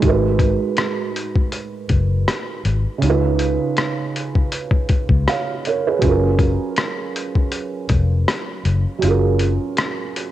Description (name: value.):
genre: lo-fi hip hop.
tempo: 80 BPM.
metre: 4/4.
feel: swing 56% on 16ths.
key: F# major.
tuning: A4 = 441 Hz.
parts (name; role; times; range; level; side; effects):
felt-muted upright piano; accompaniment; 0.0-10.3 s; C#3 to E#5; -21 LUFS; right 5 dB; cassette tape, low-pass filter.
vintage muted fingered electric bass; bass; 0.0-9.6 s; E#1 to C#2; -18 LUFS; left 2 dB; none.
lo-fi sampler-style drum kit; drums; 0.0-10.3 s; hi-hat, kick drum, rim click; -20 LUFS; left 2 dB; overdrive, cassette tape.
room: moderate lush hall reverb, RT60 2.0 s, digital ambience.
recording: home recording on cassette.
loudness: -17 LUFS.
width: side -13 dB against mid.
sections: 0.0-10.3 A section.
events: none.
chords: 0.0 G#m7; 3.0 C#7; 6.0 F#maj7.